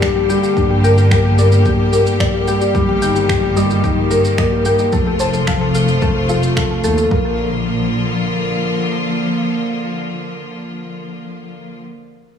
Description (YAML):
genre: piano and strings electronica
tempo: 110 BPM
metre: 4/4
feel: straight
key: Bb major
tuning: A4 = 441 Hz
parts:
  - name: bright symphonic string section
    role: sustained chords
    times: 0.0-11.8 s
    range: C3 to G4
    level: -21 LUFS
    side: equal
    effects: sidechain pumping
  - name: soft round pluck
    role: arpeggios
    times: 0.0-7.4 s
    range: G4 to A5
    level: -24 LUFS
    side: left 5 dB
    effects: chorus, sidechain pumping, digital delay
  - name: felt-muted upright piano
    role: riff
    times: 0.0-12.4 s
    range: G3 to F5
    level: -18 LUFS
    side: left 2 dB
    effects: digital delay
  - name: warm studio double bass section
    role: bass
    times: 0.0-8.7 s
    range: F1 to Eb2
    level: -18 LUFS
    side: equal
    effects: sidechain pumping
  - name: electronic finger snaps and shaker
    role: drums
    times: 0.0-7.1 s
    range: none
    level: -26 LUFS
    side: right 3 dB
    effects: overdrive
  - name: electronic kick drum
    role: drums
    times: 0.0-7.2 s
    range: none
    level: -20 LUFS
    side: equal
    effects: overdrive
room: light reverb, small room ambience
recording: studio reverb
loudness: -13 LUFS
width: side -8 dB against mid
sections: 0.0-7.1 A section; 7.1-11.5 B section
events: drop 0.0-7.1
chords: 0.0 Gm; 2.7 Eb/G; 4.9 F; 7.1 Bb